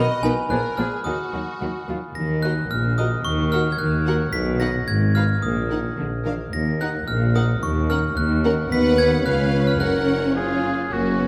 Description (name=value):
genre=cinematic, playful, whimsical film cue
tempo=110 BPM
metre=2/4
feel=straight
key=Eb minor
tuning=A4 = 440 Hz
part: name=glockenspiel with brass mallets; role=melody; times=0.0-10.6 s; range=Ab5 to B6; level=-30 LUFS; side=equal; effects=none
part: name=rich studio violin section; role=melody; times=0.0-11.3 s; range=Gb4 to Gb5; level=-35 LUFS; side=equal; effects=none
part: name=warm studio violin section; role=second line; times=0.0-11.3 s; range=C#4 to B4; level=-28 LUFS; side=equal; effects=none
part: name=warm studio viola section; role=accompaniment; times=0.0-11.3 s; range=D#3 to Gb4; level=-29 LUFS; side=equal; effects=none
part: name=rich studio cello section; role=bass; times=0.0-11.3 s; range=C#2 to Eb3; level=-28 LUFS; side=equal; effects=none
part: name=warm studio double bass section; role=bass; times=0.0-11.3 s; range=F#1 to Eb2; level=-29 LUFS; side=equal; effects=none
part: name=warm tuba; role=bass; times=2.2-11.3 s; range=F#1 to Eb2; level=-29 LUFS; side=equal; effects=none
part: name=mellow oboe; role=second line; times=10.4-11.3 s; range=F#4 to G#4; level=-29 LUFS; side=equal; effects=none
room=wet scoring stage reverb, RT60 1.5 s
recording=none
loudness=-22 LUFS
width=mono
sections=0.0-2.2 A section; 2.2-10.9 B section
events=none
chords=0.0 B; 0.5 Bb7(no3); 1.1 Ebm; 3.3 Gb5/Eb; 4.3 B; 4.9 Fm7/Ab; 5.4 Eb5/Bb; 6.0 Bb; 6.5 Ebm; 7.6 Gb5/Eb; 8.7 B/D#; 9.3 C#7; 9.8 F#